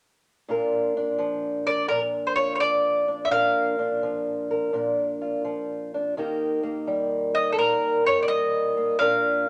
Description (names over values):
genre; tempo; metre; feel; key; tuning
acoustic country blues, solo or duo; 85 BPM; 4/4; swing 67% on 8ths; Bb major; A4 = 438 Hz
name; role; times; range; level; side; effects
fingerpicked old ladder-braced acoustic guitar; accompaniment; 0.5-9.5 s; Bb2 to Bb4; -27 LUFS; equal; none
mandolin; melody; 1.7-9.5 s; A4 to F5; -25 LUFS; equal; none
room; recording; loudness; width
moderate studio reverb, RT60 0.8 s; none; -24 LUFS; mono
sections
0.5-9.5 A section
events
none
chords
0.5 Bb; 6.2 Eb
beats
| 0.49 1.20 1.91 2.61 | 3.32 4.03 4.74 5.45 | 6.16 6.87 7.58 8.29 | 9.00